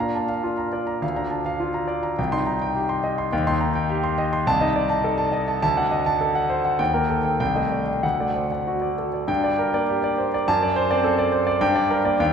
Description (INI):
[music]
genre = classical, virtuoso piano study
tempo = 94-107 BPM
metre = 2/4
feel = rubato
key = G minor from 4.5 s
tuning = A4 = 441 Hz
[part]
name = clear concert grand piano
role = solo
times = 0.0-12.3 s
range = C2 to C6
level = -20 LUFS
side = equal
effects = none
[sound]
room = wet church reverb, RT60 3.1 s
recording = recorded in a church or concert hall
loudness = -20 LUFS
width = side -7 dB against mid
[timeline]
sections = 0.0-9.3 A section; 9.3-12.3 B section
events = none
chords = 0.0 Bb; 1.0 Bb/D; 2.2 Cm; 3.3 Cm/Eb; 4.5 Adim/C; 5.6 D7; 6.8 Eb; 7.4 Am7b5/C; 8.0 D; 9.3 Gm; 10.5 D7/F#; 11.6 Gm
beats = 0.44 | 1.03 1.61 | 2.18 2.75 | 3.33 3.90 | 4.47 5.05 | 5.63 6.21 | 6.80 7.40 | 8.03 8.66 | 9.29 9.89 | 10.48 11.04 | 11.61 12.19